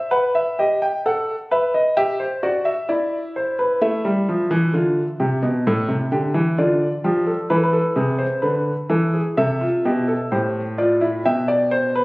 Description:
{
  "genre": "classical, baroque-style 3-part fugue for grand piano",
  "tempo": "65 BPM",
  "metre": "4/4",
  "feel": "straight",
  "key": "unclear",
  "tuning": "A4 = 441 Hz",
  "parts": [
    { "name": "warm grand piano", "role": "solo", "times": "0.0-12.0 s", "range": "A2 to G5", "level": "-18 LUFS", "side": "equal", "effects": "none" }
  ],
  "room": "moderate recital hall reverb, RT60 1.3 s",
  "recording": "recorded on a phone in the room, club reverb, compression",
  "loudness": "-18 LUFS",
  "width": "side -23 dB against mid",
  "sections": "0.0-12.0 A section",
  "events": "none",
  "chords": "0.1 B7; 2.0 Em; 3.8 N.C.; 5.6 Fmaj13/A; 7.5 E7; 9.4 Am; 11.2 Em/B",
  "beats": "| 0.12 1.04 1.96 2.87 | 3.79 4.72 5.64 6.57 | 7.50 8.43 9.37 10.30 | 11.24"
}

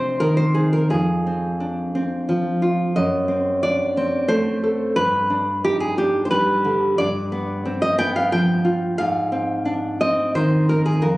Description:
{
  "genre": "romantic piece for solo classical guitar",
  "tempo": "88 BPM",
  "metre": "3/4",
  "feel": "rubato",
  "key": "unclear",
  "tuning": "A4 = 440 Hz",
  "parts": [
    { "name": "nylon-string guitar", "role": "solo", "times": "0.0-11.2 s", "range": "F2 to G5", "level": "-18 LUFS", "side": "equal", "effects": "slapback echo" }
  ],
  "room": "moderate concert hall reverb, RT60 1.9 s",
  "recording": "recorded on a phone in the room, club reverb, compression",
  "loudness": "-18 LUFS",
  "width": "side -19 dB against mid",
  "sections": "0.0-11.2 A section",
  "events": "none",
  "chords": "0.0 Cm; 0.9 Fm; 3.0 F#dim7; 5.0 G; 7.0 G7; 9.0 Ab",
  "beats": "0.20 | 0.91 1.60 2.29 | 2.96 3.63 4.30 | 4.97 5.64 6.32 | 7.00 7.67 8.33 | 8.99 9.67 10.36 | 11.05"
}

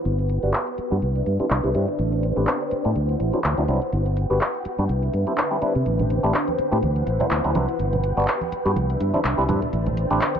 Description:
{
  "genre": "filtered disco house",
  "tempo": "124 BPM",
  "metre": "4/4",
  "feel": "swing 55% on 16ths",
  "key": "G major",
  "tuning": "A4 = 441 Hz",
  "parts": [
    { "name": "string machine, full ensemble", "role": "sustained chords", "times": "0.0-10.4 s", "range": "D4 to G5", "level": "-26 LUFS", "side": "equal", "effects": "ensemble chorus, low-pass filter" },
    { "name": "fingered electric bass", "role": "bass", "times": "0.1-10.2 s", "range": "G1 to C3", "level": "-23 LUFS", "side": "equal", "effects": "low-pass filter" },
    { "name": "punchy analog drum machine", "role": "drums", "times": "0.1-10.4 s", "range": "handclaps, hi-hat", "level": "-27 LUFS", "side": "equal", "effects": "low-pass filter on hats, low-pass filter on perc, low-pass filter on snare, low-pass filter on room" },
    { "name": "bright clav", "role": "accompaniment", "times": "0.4-10.2 s", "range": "F#3 to C5", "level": "-27 LUFS", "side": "equal", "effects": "phaser, low-pass filter" },
    { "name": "maracas and congas", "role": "percussion", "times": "5.9-10.4 s", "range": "none", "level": "-30 LUFS", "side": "right 4 dB", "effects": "low-pass filter on perc" }
  ],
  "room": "light reverb",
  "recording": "none",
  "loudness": "-20 LUFS",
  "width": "side -8 dB against mid",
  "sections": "0.0-10.4 A section",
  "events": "filter sweep 0.0-10.4",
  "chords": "0.1 Gmaj7; 1.0 Cmaj9; 2.0 Am11; 3.0 D13; 3.9 Gmaj7; 4.9 Cmaj9; 5.9 Am11; 6.8 D13; 7.8 Gmaj7; 8.8 Cmaj9; 9.7 Am11",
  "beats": "| 0.05 0.54 1.02 1.51 | 1.99 2.47 2.96 3.44 | 3.92 4.41 4.89 5.38 | 5.86 6.34 6.83 7.31 | 7.80 8.28 8.76 9.25 | 9.73 10.21"
}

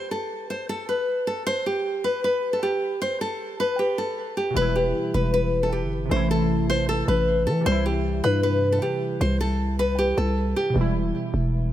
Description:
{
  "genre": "hip hop, trap",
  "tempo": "155 BPM",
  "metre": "4/4",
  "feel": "half-time",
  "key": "E minor",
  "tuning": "A4 = 443 Hz",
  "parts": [
    { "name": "nylon-string guitar", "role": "melody", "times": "0.0-10.7 s", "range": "G4 to C5", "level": "-24 LUFS", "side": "left 1 dB", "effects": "tape echo" },
    { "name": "glassy digital keys", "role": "accompaniment", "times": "4.5-11.7 s", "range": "B2 to E4", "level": "-28 LUFS", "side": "right 1 dB", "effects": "chorus" },
    { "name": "growling 808-style bass", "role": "bass", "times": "4.6-11.7 s", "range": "E1 to E3", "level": "-24 LUFS", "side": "equal", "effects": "none" }
  ],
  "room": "studio reverb",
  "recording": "none",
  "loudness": "-21 LUFS",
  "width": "side -12 dB against mid",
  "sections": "0.0-4.6 A section; 4.6-11.7 B section",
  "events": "none",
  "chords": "0.0 N.C.; 4.6 Em; 6.1 Am; 7.7 C; 10.8 Em",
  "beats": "0.30 0.69 1.08 | 1.47 1.85 2.24 2.63 | 3.02 3.40 3.79 4.18 | 4.56 4.95 5.34 5.72 | 6.11 6.50 6.89 7.27 | 7.66 8.05 8.43 8.82 | 9.21 9.60 9.98 10.37 | 10.76 11.14 11.53"
}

